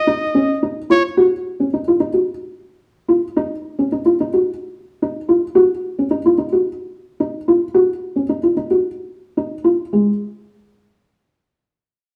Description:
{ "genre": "afrobeat", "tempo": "110 BPM", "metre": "4/4", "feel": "straight", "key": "unclear", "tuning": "A4 = 438 Hz", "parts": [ { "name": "clear trumpet", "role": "melody", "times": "0.0-1.0 s", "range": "C#5 to D#5", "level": "-22 LUFS", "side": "equal", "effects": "none" }, { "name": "felt-muted upright piano", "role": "arpeggios", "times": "0.1-10.1 s", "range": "G#3 to F#4", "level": "-18 LUFS", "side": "equal", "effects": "none" } ], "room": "moderate stone room reverb, RT60 1.1 s", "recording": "band playing live in one room", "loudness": "-18 LUFS", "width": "mono", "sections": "0.0-1.2 A section; 1.2-9.9 B section; 9.9-12.2 C section", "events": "none", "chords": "0.0 N.C.; 1.2 C#add9 (rootless); 9.9 N.C." }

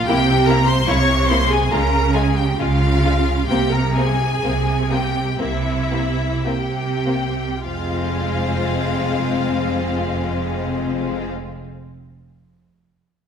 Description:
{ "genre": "classical, slow romantic movement for string orchestra", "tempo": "48-77 BPM", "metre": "4/4", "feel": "rubato", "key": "F minor", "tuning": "A4 = 440 Hz", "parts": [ { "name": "warm symphonic violin section", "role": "melody", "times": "0.0-11.3 s", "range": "E5 to Db6", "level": "-24 LUFS", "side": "left 3 dB", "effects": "none" }, { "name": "rich symphonic viola section", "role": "accompaniment", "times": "0.0-11.3 s", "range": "E4 to Db5", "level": "-25 LUFS", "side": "equal", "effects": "none" }, { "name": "warm symphonic violin section", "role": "second line", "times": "0.1-11.3 s", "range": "Ab3 to F4", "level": "-25 LUFS", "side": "left 3 dB", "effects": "none" }, { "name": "rich symphonic cello section", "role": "bass", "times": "0.1-11.3 s", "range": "F2 to Db3", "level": "-22 LUFS", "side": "right 2 dB", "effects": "none" }, { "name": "warm symphonic double bass section", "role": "bass", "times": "0.1-11.3 s", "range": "F1 to Db2", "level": "-23 LUFS", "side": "right 2 dB", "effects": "none" } ], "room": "moderate scoring stage reverb, RT60 1.6 s", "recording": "none", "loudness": "-17 LUFS", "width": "side -7 dB against mid", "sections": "0.0-7.6 A section; 7.6-12.0 B section", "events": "slowing down 0.0-7.6", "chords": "0.1 C7(no3); 1.7 Db; 3.5 C7; 7.6 Fm" }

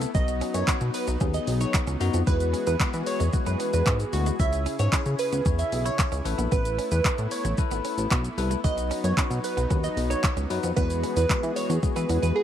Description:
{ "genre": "dance-pop", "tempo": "113 BPM", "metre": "4/4", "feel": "straight", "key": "E major", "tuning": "A4 = 440 Hz", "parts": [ { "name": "bell-like tine electric piano", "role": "accompaniment", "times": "0.0-12.4 s", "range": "G#3 to C#5", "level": "-32 LUFS", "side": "left 13 dB", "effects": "medium stereo tremolo, sidechain pumping" }, { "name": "soft supersaw", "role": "sustained chords", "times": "0.0-12.4 s", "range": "C#3 to G#4", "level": "-37 LUFS", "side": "right 1 dB", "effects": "sidechain pumping" }, { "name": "direct-recorded clean electric guitar", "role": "riff", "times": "0.0-12.2 s", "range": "G#3 to E4", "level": "-38 LUFS", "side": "right 12 dB", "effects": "analog chorus" }, { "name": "chorused synth bass", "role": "bass", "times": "0.0-12.3 s", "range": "G#1 to E3", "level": "-26 LUFS", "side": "equal", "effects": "sidechain pumping" }, { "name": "pop drum kit", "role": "drums", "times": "0.0-12.4 s", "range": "handclaps, hi-hat, kick drum, shaker", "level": "-26 LUFS", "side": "equal", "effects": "overdrive" }, { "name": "glassy wavetable pluck", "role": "melody", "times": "0.1-12.4 s", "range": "F#4 to E5", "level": "-29 LUFS", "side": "right 3 dB", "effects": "chorus, sidechain pumping, slapback echo" } ], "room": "light reverb", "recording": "1960s-style stereo with parts hard left and right", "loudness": "-23 LUFS", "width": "side -10 dB against mid", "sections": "0.0-12.4 A section", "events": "none", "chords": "0.1 B; 2.3 Eadd9; 4.4 C#m; 6.3 Asus2; 8.6 B; 10.8 Eadd9" }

